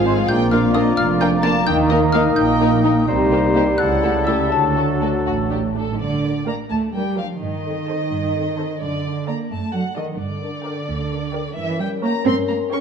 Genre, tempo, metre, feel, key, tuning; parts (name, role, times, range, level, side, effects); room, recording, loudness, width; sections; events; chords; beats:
cinematic; 86 BPM (dotted quarters); 6/8; straight; G minor; A4 = 440 Hz
muted chamber violin section; melody; 0.0-12.8 s; A4 to A5; -29 LUFS; left 4 dB
xylophone with rubber mallets; melody; 0.0-5.2 s; A5 to A6; -26 LUFS; left 5 dB
muted chamber violin section; second line; 0.0-12.8 s; Eb4 to Db6; -28 LUFS; left 2 dB
muted chamber viola section; accompaniment; 0.0-12.8 s; F3 to D5; -27 LUFS; right 1 dB
mellow French horn section; sustained chords; 0.0-12.8 s; A3 to Bb4; -26 LUFS; left 6 dB
muted chamber cello section; bass; 0.0-12.8 s; F2 to Db4; -22 LUFS; right 3 dB
muted chamber double bass section; bass; 0.0-12.8 s; F1 to G2; -25 LUFS; right 4 dB
mellow clarinet; second line; 0.1-5.7 s; D4 to F4; -24 LUFS; left 1 dB
mellow concert flute; second line; 0.1-5.8 s; A5 to C6; -27 LUFS; left 6 dB
warm oboe; second line; 0.1-5.7 s; A4 to Eb5; -28 LUFS; right 2 dB
warm bassoon; accompaniment; 0.1-5.7 s; F#3 to Bb3; -24 LUFS; equal
moderate scoring stage reverb, RT60 2.2 s; -17 LUFS; side -7 dB against mid
0.0-6.0 A section; 6.0-12.8 B section
0.3 Bb; 1.7 Eb; 3.1 Cm7; 3.8 A7/C#; 4.5 D; 6.0 Gm; 7.4 Am7b5/G; 8.8 D/F#; 10.2 Gm; 11.6 Gdim7
| 0.29 0.97 | 1.67 2.37 | 3.08 3.79 | 4.52 5.26 | 5.99 6.70 | 7.41 8.11 | 8.81 9.50 | 10.19 10.88 | 11.56 12.26